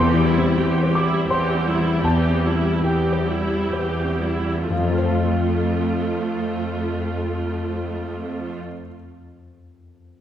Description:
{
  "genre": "cinematic",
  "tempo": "60-90 BPM",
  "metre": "3/4",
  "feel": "rubato",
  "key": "F major",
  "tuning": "A4 = 441 Hz",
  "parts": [
    { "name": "dark concert grand piano", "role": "accompaniment", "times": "0.0-10.2 s", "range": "E2 to D6", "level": "-23 LUFS", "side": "left 1 dB", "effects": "none" },
    { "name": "warm studio viola section", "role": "accompaniment", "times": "0.0-8.6 s", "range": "E3 to G4", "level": "-24 LUFS", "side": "right 1 dB", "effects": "none" },
    { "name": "concert harp", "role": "arpeggios", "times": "0.0-8.9 s", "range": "E2 to F5", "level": "-28 LUFS", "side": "left 5 dB", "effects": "none" },
    { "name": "clear studio cello section", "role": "bass", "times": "0.0-8.6 s", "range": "E2 to F2", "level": "-26 LUFS", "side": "right 2 dB", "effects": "none" }
  ],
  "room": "wet scoring stage reverb, RT60 1.9 s",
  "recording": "heard from further back in the room",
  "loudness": "-19 LUFS",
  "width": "side -10 dB against mid",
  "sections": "0.0-4.7 A section; 4.7-10.2 B section",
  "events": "slowing down 0.0-4.7",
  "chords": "0.0 C/E; 4.7 F"
}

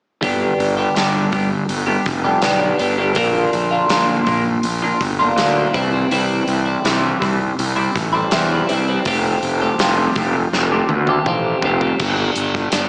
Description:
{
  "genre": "quiet-loud alternative rock",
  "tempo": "82 BPM",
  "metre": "4/4",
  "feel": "straight",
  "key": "unclear",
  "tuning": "A4 = 440 Hz",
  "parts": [
    { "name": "twelve-string electric guitar", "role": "arpeggios", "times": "0.2-12.9 s", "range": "G2 to G4", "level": "-21 LUFS", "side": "equal", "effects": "phaser, analog delay" },
    { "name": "fuzz fingered electric bass", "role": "bass", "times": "0.2-12.9 s", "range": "F1 to E2", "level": "-22 LUFS", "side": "equal", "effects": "overdrive" },
    { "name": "big rock drum kit", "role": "drums", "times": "0.2-12.9 s", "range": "crash cymbal, hi-hat, kick drum, snare drum, toms", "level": "-25 LUFS", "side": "equal", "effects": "none" }
  ],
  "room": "light reverb",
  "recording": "small speaker sound",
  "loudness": "-18 LUFS",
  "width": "mono",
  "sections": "0.2-12.0 A section",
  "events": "drum fill 10.5-12.0",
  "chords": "0.2 G; 3.2 Bb; 5.7 C; 9.1 Fadd9; 12.0 G5"
}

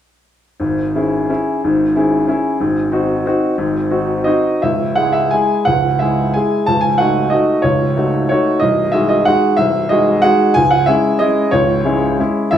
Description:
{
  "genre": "classical, piano waltz",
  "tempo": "151-195 BPM",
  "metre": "3/4",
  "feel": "rubato",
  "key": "C# minor",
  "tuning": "A4 = 440 Hz",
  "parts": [
    { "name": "bright baby grand piano", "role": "solo", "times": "0.6-12.6 s", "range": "A0 to A5", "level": "-13 LUFS", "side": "equal", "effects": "none" }
  ],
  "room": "moderate recital hall reverb, RT60 1.5 s",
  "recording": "minimal, uncompressed stereo recording",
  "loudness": "-13 LUFS",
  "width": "side -10 dB against mid",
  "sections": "0.6-4.6 A section; 4.6-12.6 B section",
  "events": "none",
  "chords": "0.6 C#m/G#; 2.6 G#7; 4.6 C#m; 6.7 D#m7b5/C#; 8.6 G#7/B#; 10.6 C#m"
}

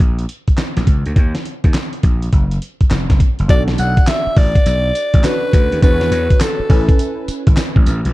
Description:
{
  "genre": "R&B, new jack swing",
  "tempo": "103 BPM",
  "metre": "4/4",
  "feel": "swing 65% on 16ths",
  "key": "Bb minor, B dorian from 3.5 s",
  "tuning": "A4 = 440 Hz",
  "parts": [
    { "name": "gritty slap bass", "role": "bass", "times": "0.0-8.1 s", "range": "F1 to E2", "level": "-18 LUFS", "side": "equal", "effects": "overdrive" },
    { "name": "dusty soul sampler-style drum kit", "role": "drums", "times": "0.0-8.1 s", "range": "handclaps, hi-hat, kick drum, snare drum, tambourine", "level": "-13 LUFS", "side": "equal", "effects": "none" },
    { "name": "raspy alto saxophone", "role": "melody", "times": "3.5-7.3 s", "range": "A4 to F#5", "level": "-19 LUFS", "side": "equal", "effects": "ping-pong delay" },
    { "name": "warm analog keys", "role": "accompaniment", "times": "3.5-8.1 s", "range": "C#4 to G#5", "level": "-24 LUFS", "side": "equal", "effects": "chorus" }
  ],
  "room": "little or no reverb",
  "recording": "dark, warm production",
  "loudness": "-12 LUFS",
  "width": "side -18 dB against mid",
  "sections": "0.0-3.5 A section; 3.5-8.1 B section",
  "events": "none",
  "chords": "0.0 Bbm; 1.2 N.C.; 3.5 Bm9; 5.8 E13; 6.7 Amaj9"
}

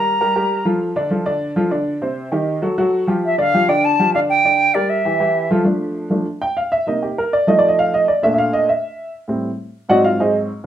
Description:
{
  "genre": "jazz",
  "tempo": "198 BPM",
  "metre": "4/4",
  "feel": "straight",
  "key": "unclear",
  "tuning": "A4 = 440 Hz",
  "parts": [
    { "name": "silver concert flute", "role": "melody", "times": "0.0-0.7, 3.3-5.5 s", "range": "D5 to Bb5", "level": "-16 LUFS", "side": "equal", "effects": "plate reverb" },
    { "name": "clear upright piano", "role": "accompaniment", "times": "0.0-10.7 s", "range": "Ab2 to G5", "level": "-16 LUFS", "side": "equal", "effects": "none" }
  ],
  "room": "moderate small room reverb, RT60 0.5 s",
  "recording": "none",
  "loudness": "-15 LUFS",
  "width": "side -11 dB against mid",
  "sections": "0.0-5.7 A section; 5.7-10.7 B section",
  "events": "upright piano solo 5.7-10.7",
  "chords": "0.0 Ebadd9 (rootless); 0.8 Dm; 2.0 Cm; 2.6 F#mmaj7; 3.2 Gsus2; 4.4 Gm6/D; 5.0 Emadd11; 5.7 F6; 6.9 Cm7; 7.5 F7; 8.1 Bbmaj7; 9.3 Am7; 9.9 Ab7#11"
}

